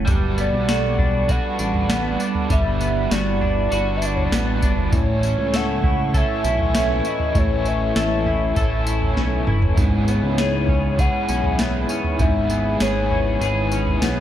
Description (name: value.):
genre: dream pop.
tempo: 99 BPM.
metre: 4/4.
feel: straight.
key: unclear.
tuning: A4 = 438 Hz.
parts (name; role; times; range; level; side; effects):
hollow soft pad; sustained chords; 0.0-14.2 s; G3 to C#6; -29 LUFS; equal; chorus.
electric guitar at the edge of break-up; arpeggios; 0.0-14.2 s; G#2 to A4; -25 LUFS; left 1 dB; analog chorus, digital delay.
chorused synth bass; bass; 0.0-14.2 s; F#1 to C#2; -24 LUFS; equal; none.
raw garage guitar; accompaniment; 0.1-14.2 s; G#2 to B4; -29 LUFS; right 2 dB; overdrive, tremolo, lush chorus.
soft vintage rhythm box; drums; 0.1-14.2 s; kick drum, snare drum, tambourine, toms; -22 LUFS; equal; overdrive.
warbly nostalgic lead; melody; 0.4-14.0 s; C#5 to F#5; -26 LUFS; equal; chorus, digital delay.
vibraphone with soft mallets; texture; 0.7-14.2 s; G#4 to E5; -37 LUFS; left 2 dB; none.
room: light reverb.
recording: dark, warm production.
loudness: -18 LUFS.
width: side -11 dB against mid.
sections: 0.1-14.2 A section.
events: drum fill 9.2-9.8.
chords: 0.1 Gmaj7; 4.9 A; 9.8 C#m7/G#.